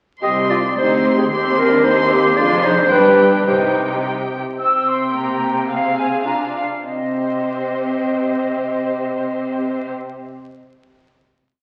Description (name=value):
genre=quick classical-period movement for symphony orchestra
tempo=99-114 BPM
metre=2/4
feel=rubato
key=C minor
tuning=A4 = 440 Hz
part: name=muted chamber violin section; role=melody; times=0.2-9.9 s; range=C5 to C6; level=-26 LUFS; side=equal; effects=none
part: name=mellow clarinet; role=second line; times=0.2-4.0 s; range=G4 to Eb5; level=-18 LUFS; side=equal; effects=none
part: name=muted studio violin section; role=second line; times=0.2-9.9 s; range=Bb3 to C5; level=-28 LUFS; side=equal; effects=none
part: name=muted symphonic viola section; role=accompaniment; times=0.2-9.9 s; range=Bb3 to Ab4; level=-25 LUFS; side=equal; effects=none
part: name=muted chamber cello section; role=bass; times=0.2-9.9 s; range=C2 to C3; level=-28 LUFS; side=equal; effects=none
part: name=muted symphonic double bass section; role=bass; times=0.2-4.4 s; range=F1 to Eb2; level=-32 LUFS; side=equal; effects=none
part: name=mellow flute section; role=second line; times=4.6-9.9 s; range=Eb5 to E6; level=-24 LUFS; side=equal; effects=none
room=wet recital hall reverb, RT60 1.8 s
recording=very old 78 rpm record, vinyl crackle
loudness=-17 LUFS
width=mono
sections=0.2-4.6 A section; 4.6-6.8 coda; 6.8-9.1 final chord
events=slowing down 4.0-6.8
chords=0.2 C5; 1.3 Cm/Eb; 2.4 Dm7b5/F; 2.9 G; 3.5 Cm; 4.6 C5; 5.7 Fm/C; 6.8 Cm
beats=| 0.23 0.78 | 1.32 1.85 | 2.38 2.92 | 3.47 4.03 | 4.59 5.14 | 5.69 6.24 | 6.83 7.41 | 7.99 8.56